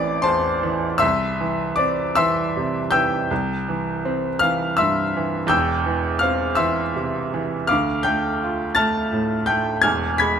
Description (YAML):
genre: classical, romantic nocturne for solo piano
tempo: 54 BPM (dotted quarters)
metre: 6/8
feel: uneven beats, rubato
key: unclear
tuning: A4 = 439 Hz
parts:
  - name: clear baby grand piano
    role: solo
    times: 0.0-10.4 s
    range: E1 to B6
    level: -18 LUFS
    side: equal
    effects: none
room: light reverb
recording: close, detailed microphones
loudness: -19 LUFS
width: side -7 dB against mid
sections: 0.0-10.4 A section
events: none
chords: 0.0 Am; 1.0 Cadd9; 3.3 C; 5.5 C/E; 7.7 Dm; 9.9 E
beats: | 1.02 2.17 | 3.31 4.42 | 5.51 6.59 | 7.70 8.78 | 9.85